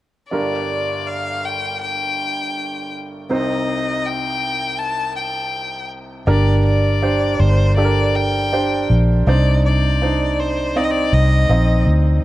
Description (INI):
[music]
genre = pop ballad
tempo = 81 BPM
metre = 4/4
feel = straight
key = G minor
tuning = A4 = 440 Hz
[part]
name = clear violin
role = melody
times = 0.3-11.9 s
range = C5 to A5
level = -22 LUFS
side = left 3 dB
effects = none
[part]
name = bright upright piano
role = accompaniment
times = 0.3-12.2 s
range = G1 to Eb5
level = -22 LUFS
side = right 2 dB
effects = none
[part]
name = vintage muted fingered electric bass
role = bass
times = 6.3-12.2 s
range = G1 to D2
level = -16 LUFS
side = equal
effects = none
[sound]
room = light reverb, studio ambience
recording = dark, warm production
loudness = -16 LUFS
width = side -15 dB against mid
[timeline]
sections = 0.3-6.3 A section; 6.3-12.2 B section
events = none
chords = 0.3 Gm; 3.3 Cm; 6.3 Gm; 9.3 Cmadd9